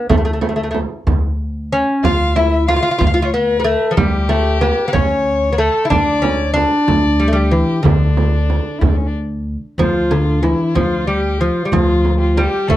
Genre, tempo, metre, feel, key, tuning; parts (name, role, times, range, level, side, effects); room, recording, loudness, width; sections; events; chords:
Persian modal ensemble; 62 BPM (dotted quarters); 6/8; straight; D avaz esfahan; A4 = 440 Hz
lute; melody; 0.0-12.8 s; D3 to F4; -16 LUFS; equal
upright bass; bass; 0.1-12.8 s; D2; -18 LUFS; equal
frame drum; percussion; 0.1-12.8 s; -20 LUFS; right 4 dB
warm violin; second line; 2.0-12.8 s; C#4 to F5; -22 LUFS; left 4 dB
light reverb; dark, warm production; -13 LUFS; side -14 dB against mid
0.0-9.8 A section; 9.8-12.8 B section